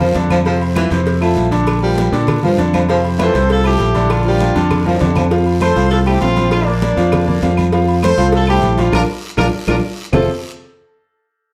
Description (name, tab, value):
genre	latin, salsa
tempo	199 BPM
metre	4/4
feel	straight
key	F major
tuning	A4 = 441 Hz
part	breathy baritone saxophone	second line	0.0-5.2 s	E3 to A3	-22 LUFS	equal	none
part	bright concert grand piano	accompaniment	0.0-10.3 s	C3 to F5	-21 LUFS	equal	none
part	modern bright fingered electric bass	bass	0.0-10.3 s	F1 to Bb2	-18 LUFS	equal	none
part	congas	percussion	0.0-10.2 s	none	-25 LUFS	equal	none
part	cowbell and bongos	percussion	0.1-10.2 s	none	-29 LUFS	equal	none
part	agogo bells and timbales	percussion	0.2-10.2 s	none	-30 LUFS	equal	none
part	guiro	percussion	0.2-10.2 s	none	-37 LUFS	equal	none
part	claves	percussion	0.3-10.2 s	none	-34 LUFS	equal	none
part	clear horn section	melody	3.2-10.3 s	Bb3 to C5	-20 LUFS	equal	none
room	wet large studio reverb, RT60 0.8 s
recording	heard from further back in the room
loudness	-15 LUFS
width	mono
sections	0.0-5.3 A section; 5.3-10.1 B section; 10.1-11.3 C section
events	drum fill 4.9-5.3, 8.9-10.1; band accent 8.9-10.1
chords	0.5 Fmaj7; 1.7 Bb; 2.9 Fmaj7; 4.1 Bb; 5.3 F; 6.5 Bb; 7.7 Fmaj7; 8.9 Bb; 10.1 Fmaj7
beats	0.15 | 0.46 0.76 1.06 1.37 | 1.67 1.98 2.28 2.58 | 2.89 3.19 3.49 3.80 | 4.10 4.40 4.71 5.01 | 5.31 5.61 5.91 6.22 | 6.52 6.82 7.12 7.42 | 7.72 8.02 8.32 8.63 | 8.93 9.23 9.53 9.83 | 10.13